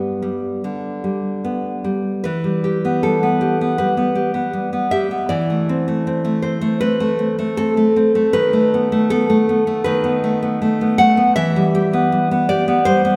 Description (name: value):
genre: romantic piece for solo classical guitar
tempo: 79 BPM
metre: 4/4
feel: rubato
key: E minor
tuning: A4 = 440 Hz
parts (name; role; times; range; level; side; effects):
- nylon-string guitar; solo; 0.0-13.2 s; G2 to F#5; -18 LUFS; equal; none
room: wet concert hall reverb, RT60 2.1 s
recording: heard from further back in the room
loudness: -18 LUFS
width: mono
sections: 0.0-2.2 A section; 2.2-13.2 B section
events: none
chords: 0.0 G; 2.2 Em; 5.3 Am/E; 8.4 B7/D#; 11.4 Em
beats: 0.64 1.44 | 2.25 3.03 3.79 4.54 | 5.30 6.08 6.83 7.59 | 8.35 9.12 9.87 10.62 | 11.37 12.12 12.86